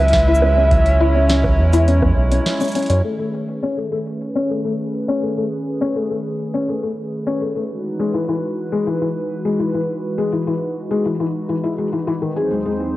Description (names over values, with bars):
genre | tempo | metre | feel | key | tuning
IDM | 103 BPM | 4/4 | straight | A lydian | A4 = 440 Hz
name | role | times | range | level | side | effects
warbly nostalgic lead | melody | 0.0-2.5 s | E5 | -19 LUFS | right 1 dB | lush chorus, cassette tape, analog delay
hollow soft pad | sustained chords | 0.0-13.0 s | D#2 to C#5 | -24 LUFS | right 1 dB | chorus, vintage 12-bit sampler grit
round analog bass | bass | 0.0-3.0 s | B1 to F#2 | -15 LUFS | right 1 dB | none
booming analog drum machine | drums | 0.1-3.0 s | bongos, hi-hat, shaker, snare drum | -25 LUFS | right 1 dB | low-pass filter on hats, low-pass filter on snare, low-pass filter on perc, low-pass filter on room
electronic kick drum | drums | 0.1-2.1 s | none | -20 LUFS | right 1 dB | none
felt-muted upright piano | arpeggios | 0.3-12.7 s | D#3 to C#5 | -21 LUFS | left 3 dB | low-pass filter, analog delay
room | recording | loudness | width
moderate lush hall reverb, RT60 2.4 s | home recording on cassette | -17 LUFS | side -16 dB against mid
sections
0.0-3.0 A section; 3.0-13.0 B section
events
break 2.5-3.0; band accent 2.5; drum fill 2.8; filter sweep on felt piano 3.0-13.0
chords
0.0 C#m7; 3.0 Amaj9#11; 7.7 Emaj9; 12.4 G#7/D#